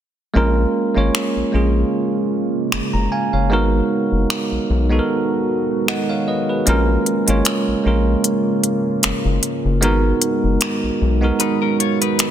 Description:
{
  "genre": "contemporary R&B",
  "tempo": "76 BPM",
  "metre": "4/4",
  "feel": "swing 54% on 16ths",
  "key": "Bb phrygian",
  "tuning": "A4 = 439 Hz",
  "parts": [
    { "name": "bell-like tine electric piano", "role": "accompaniment", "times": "0.3-12.3 s", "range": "Ab3 to Bb5", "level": "-19 LUFS", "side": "right 2 dB", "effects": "none" },
    { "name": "deep dark ambient pad", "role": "sustained chords", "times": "1.3-12.3 s", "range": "Db3 to Gb4", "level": "-24 LUFS", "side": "equal", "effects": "chorus, built-in reverb" },
    { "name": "round analog bass", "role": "bass", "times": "0.4-11.3 s", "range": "Gb1 to Cb2", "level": "-18 LUFS", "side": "left 1 dB", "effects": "none" },
    { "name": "smooth R&B drum kit", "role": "drums", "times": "1.1-12.3 s", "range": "finger snaps, hi-hat", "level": "-21 LUFS", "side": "left 1 dB", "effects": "soft clipping on snare" },
    { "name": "direct-recorded clean electric guitar", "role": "arpeggios", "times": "11.4-12.3 s", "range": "Db4 to Db5", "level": "-23 LUFS", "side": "left 12 dB", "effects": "wide subtle chorus" }
  ],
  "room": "light reverb",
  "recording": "dense, heavily limited modern master",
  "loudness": "-16 LUFS",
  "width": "side -10 dB against mid",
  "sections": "0.4-12.3 A section",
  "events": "kick muted 0.4-12.3",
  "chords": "0.4 Bbm7; 3.5 Abm7; 6.7 Bbm7; 9.8 Abm7",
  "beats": "| 0.35 1.14 1.93 2.72 | 3.51 4.30 5.09 5.88 | 6.67 7.46 8.25 9.04 | 9.83 10.62 11.40 12.20"
}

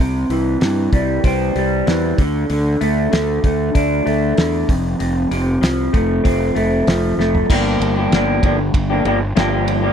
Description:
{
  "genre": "indie rock",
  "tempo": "96 BPM",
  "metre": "4/4",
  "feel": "straight",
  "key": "G dorian",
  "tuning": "A4 = 439 Hz",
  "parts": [
    { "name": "electric guitar through a small old amp", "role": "riff", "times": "0.0-9.9 s", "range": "F2 to G4", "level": "-17 LUFS", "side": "equal", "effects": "double-tracked left and right" },
    { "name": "fuzz fingered electric bass", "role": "bass", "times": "0.0-9.9 s", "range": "F1 to G2", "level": "-20 LUFS", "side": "equal", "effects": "overdrive" },
    { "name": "cloth-damped thuddy drum kit", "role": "drums", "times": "0.3-9.8 s", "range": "crash cymbal, hi-hat, kick drum, ride cymbal, snare drum, toms", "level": "-18 LUFS", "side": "equal", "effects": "none" }
  ],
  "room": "small room ambience",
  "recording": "dry, close 1970s-style studio recording",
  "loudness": "-14 LUFS",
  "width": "side -8 dB against mid",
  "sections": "0.0-7.5 A section; 7.5-9.9 B section",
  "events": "drum fill 7.2-7.5",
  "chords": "0.0 C; 2.2 D5; 4.7 F; 7.5 Gm7",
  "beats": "0.61 1.24 1.87 | 2.50 3.12 3.75 4.38 | 5.00 5.63 6.25 6.87 | 7.50 8.12 8.74 9.36"
}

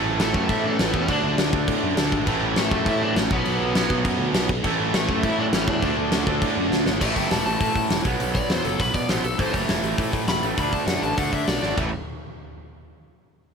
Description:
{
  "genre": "punk rock",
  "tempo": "202 BPM",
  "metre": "4/4",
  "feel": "straight",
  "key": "unclear",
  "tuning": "A4 = 439 Hz",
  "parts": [
    { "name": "crunchy overdriven guitar", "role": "riff", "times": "0.0-11.9 s", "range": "A2 to D4", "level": "-27 LUFS", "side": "right 17 dB", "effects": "none" },
    { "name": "distorted electric guitar", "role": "riff", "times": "0.0-11.9 s", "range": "A2 to D4", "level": "-28 LUFS", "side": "left 14 dB", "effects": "distortion" },
    { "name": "fuzz picked electric bass", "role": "bass", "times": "0.0-11.9 s", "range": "E1 to D3", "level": "-28 LUFS", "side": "equal", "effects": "overdrive" },
    { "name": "overdriven semi-hollow guitar", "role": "melody", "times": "0.2-11.8 s", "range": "A3 to B5", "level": "-27 LUFS", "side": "left 2 dB", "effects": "none" },
    { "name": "big rock drum kit", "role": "drums", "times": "0.2-11.8 s", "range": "china cymbal, crash cymbal, hi-hat, kick drum, snare drum, toms", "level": "-25 LUFS", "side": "left 1 dB", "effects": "none" }
  ],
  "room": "little or no reverb",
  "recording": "none",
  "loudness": "-20 LUFS",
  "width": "side -6 dB against mid",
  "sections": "0.0-7.0 A section; 7.0-11.8 B section; 11.8-13.0 C section",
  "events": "drum fill 6.7, 11.6; overdriven electric guitar solo 7.0-11.8",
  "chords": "0.0 A; 1.1 D5; 2.3 A; 3.3 B5; 4.6 A; 5.8 D5; 7.0 A; 8.1 B5; 9.4 A5; 10.6 D; 11.8 A5",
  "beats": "0.20 0.50 0.79 | 1.09 1.39 1.68 1.98 | 2.27 2.57 2.87 3.16 | 3.46 3.76 4.05 4.35 | 4.64 4.94 5.24 5.53 | 5.83 6.12 6.42 6.72 | 7.01 7.31 7.61 7.91 | 8.20 8.50 8.80 9.10 | 9.39 9.69 9.99 10.29 | 10.59 10.88 11.18 11.48 | 11.78"
}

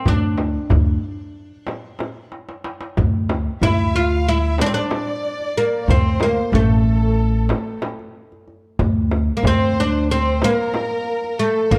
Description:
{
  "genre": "Turkish makam ensemble",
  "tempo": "185 BPM (eighths)",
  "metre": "9/8",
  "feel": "straight",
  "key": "D makam nihavent",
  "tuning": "A4 = 444 Hz",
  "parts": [
    { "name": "oud", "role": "melody", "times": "0.0-11.8 s", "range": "A3 to F4", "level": "-23 LUFS", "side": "equal", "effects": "none" },
    { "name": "upright bass", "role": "bass", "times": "0.1-11.8 s", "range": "A1 to D2", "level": "-21 LUFS", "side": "equal", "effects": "none" },
    { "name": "darbuka", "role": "percussion", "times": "0.1-11.8 s", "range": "none", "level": "-26 LUFS", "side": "equal", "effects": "none" },
    { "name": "frame drum", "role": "percussion", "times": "0.1-11.8 s", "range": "none", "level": "-28 LUFS", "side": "equal", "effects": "none" },
    { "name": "clear studio violin section", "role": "second line", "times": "3.6-11.8 s", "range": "A4 to F5", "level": "-30 LUFS", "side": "equal", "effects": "none" }
  ],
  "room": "light reverb",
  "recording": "dark, warm production",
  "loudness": "-19 LUFS",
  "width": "mono",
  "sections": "0.0-3.0 A section; 3.0-11.8 B section",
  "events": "drum fill 2.3-3.0",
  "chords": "none",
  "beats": "| 0.06 0.38 0.71 1.03 1.35 1.68 2.00 2.33 2.65 | 2.97 3.30 3.62 3.94 4.27 4.59 4.92 5.24 5.56 | 5.89 6.21 6.53 6.86 7.18 7.50 7.83 8.15 8.47 | 8.80 9.12 9.45 9.77 10.09 10.42 10.74 11.06 11.39 | 11.71"
}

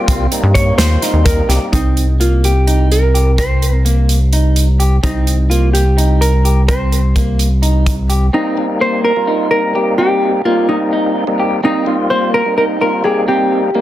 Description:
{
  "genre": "progressive instrumental, band music in an uneven meter",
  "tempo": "255 BPM (eighths)",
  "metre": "7/8",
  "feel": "straight",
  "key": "C minor",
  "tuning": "A4 = 440 Hz",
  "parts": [
    { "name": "tonewheel organ", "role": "accompaniment", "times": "0.0-1.7, 8.3-13.8 s", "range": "G3 to F4", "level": "-18 LUFS", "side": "left 1 dB", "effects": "overdrive, fast rotary speaker" },
    { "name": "electric guitar through a small old amp", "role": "arpeggios", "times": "0.1-13.8 s", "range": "Bb3 to G4", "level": "-20 LUFS", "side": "equal", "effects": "none" },
    { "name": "rubbery square bass", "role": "bass", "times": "0.1-8.3 s", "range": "C2 to G2", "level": "-12 LUFS", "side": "equal", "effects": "none" },
    { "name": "natural country drum kit", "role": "drums", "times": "0.1-8.2 s", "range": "hi-hat, kick drum, snare drum", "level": "-18 LUFS", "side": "equal", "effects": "none" },
    { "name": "hollow-body jazz guitar", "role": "melody", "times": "0.5-13.8 s", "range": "Eb4 to Db5", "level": "-16 LUFS", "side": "equal", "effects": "digital delay" }
  ],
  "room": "light reverb",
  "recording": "dense, heavily limited modern master",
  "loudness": "-11 LUFS",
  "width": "side -13 dB against mid",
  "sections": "0.0-1.7 A section; 1.7-8.3 B section; 8.3-13.8 C section",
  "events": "hollow-body jazz guitar solo 0.0-1.7",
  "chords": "0.0 Cm7",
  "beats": "| 0.08 0.32 0.56 0.79 1.03 1.26 1.50 | 1.73 1.97 2.20 2.44 2.67 2.91 3.15 | 3.38 3.62 3.85 4.09 4.33 4.56 4.80 | 5.04 5.27 5.51 5.74 5.98 6.21 6.45 | 6.69 6.92 7.16 7.39 7.63 7.87 8.10 | 8.34 8.57 8.81 9.04 9.28 9.52 9.75 | 9.99 10.22 10.46 10.69 10.93 11.16 11.40 | 11.63 11.87 12.10 12.34 12.57 12.81 13.04 | 13.28 13.52 13.75"
}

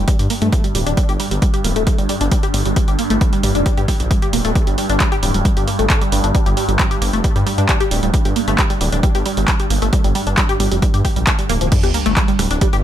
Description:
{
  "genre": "driving peak-time techno",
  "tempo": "134 BPM",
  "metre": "4/4",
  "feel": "straight",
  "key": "G minor",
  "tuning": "A4 = 440 Hz",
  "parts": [
    { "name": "detuned saw bass", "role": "bass", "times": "0.0-12.8 s", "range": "D1 to G2", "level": "-19 LUFS", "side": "equal", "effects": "sidechain pumping" },
    { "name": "swarming drone", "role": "drone", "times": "0.0-12.8 s", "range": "G2", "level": "-24 LUFS", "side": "right 1 dB", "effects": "built-in reverb, phaser, sidechain pumping" },
    { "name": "tight sequenced synth", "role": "riff", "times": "0.1-12.8 s", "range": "F3 to G4", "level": "-21 LUFS", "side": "equal", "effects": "chorus, phaser, sidechain pumping, tape echo" },
    { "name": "electronic kick drum", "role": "drums", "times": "0.1-12.7 s", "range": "none", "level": "-17 LUFS", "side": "equal", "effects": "none" },
    { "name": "punchy analog drum machine", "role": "drums", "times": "0.1-12.8 s", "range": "crash cymbal, handclaps, hi-hat, rim click", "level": "-23 LUFS", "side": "right 1 dB", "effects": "sidechain pumping on hats, sidechain pumping on cymbals" },
    { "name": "sub drop", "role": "sound effects", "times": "11.7-12.8 s", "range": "none", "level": "-25 LUFS", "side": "equal", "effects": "none" }
  ],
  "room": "light reverb, digital ambience",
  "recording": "none",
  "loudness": "-14 LUFS",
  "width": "side -11 dB against mid",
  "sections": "0.0-11.7 A section; 11.7-12.8 B section",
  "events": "drop 11.7-12.8; impact 11.7-12.8",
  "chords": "0.0 G5",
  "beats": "0.08 0.53 | 0.97 1.42 1.87 2.32 | 2.76 3.21 3.66 4.11 | 4.55 5.00 5.45 5.90 | 6.35 6.79 7.24 7.69 | 8.14 8.59 9.03 9.48 | 9.93 10.38 10.82 11.27 | 11.72 12.17 12.62"
}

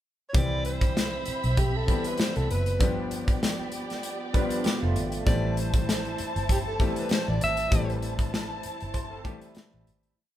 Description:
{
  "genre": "lush 1970s-style soul",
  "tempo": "98 BPM",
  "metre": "4/4",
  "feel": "swing 54% on 16ths",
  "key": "A minor",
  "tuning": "A4 = 441 Hz",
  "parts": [
    { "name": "warm alto saxophone", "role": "melody", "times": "0.3-8.0 s", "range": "G4 to E5", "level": "-31 LUFS", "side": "right 1 dB", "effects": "none" },
    { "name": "clear grand piano", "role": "accompaniment", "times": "0.3-10.2 s", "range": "E3 to G4", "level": "-33 LUFS", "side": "left 3 dB", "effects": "none" },
    { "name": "vintage muted fingered electric bass", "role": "bass", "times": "0.3-10.1 s", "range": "F1 to C2", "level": "-30 LUFS", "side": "right 1 dB", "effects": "none" },
    { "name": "modern studio drum kit", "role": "drums", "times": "0.3-10.2 s", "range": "hi-hat, kick drum, snare drum", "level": "-27 LUFS", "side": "equal", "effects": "none" },
    { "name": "dark studio string section", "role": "second line", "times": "0.4-10.1 s", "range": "B3 to B5", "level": "-36 LUFS", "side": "right 1 dB", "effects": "none" },
    { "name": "electric guitar through a small old amp", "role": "riff", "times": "4.3-5.2, 8.9-10.1 s", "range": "G3 to C5", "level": "-36 LUFS", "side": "right 5 dB", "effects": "tremolo" }
  ],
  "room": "light reverb",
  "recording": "band playing live in one room",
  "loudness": "-24 LUFS",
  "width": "side -12 dB against mid",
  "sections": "0.0-0.3 pickup bar; 0.3-10.2 A section",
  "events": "fade-out 7.7-10.2",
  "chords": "0.3 Cmaj7; 2.8 G7; 5.3 Am7",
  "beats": "| 0.35 0.96 1.58 2.19 | 2.81 3.42 4.04 4.65 | 5.26 5.88 6.49 7.10 | 7.72 8.33 8.94 9.55"
}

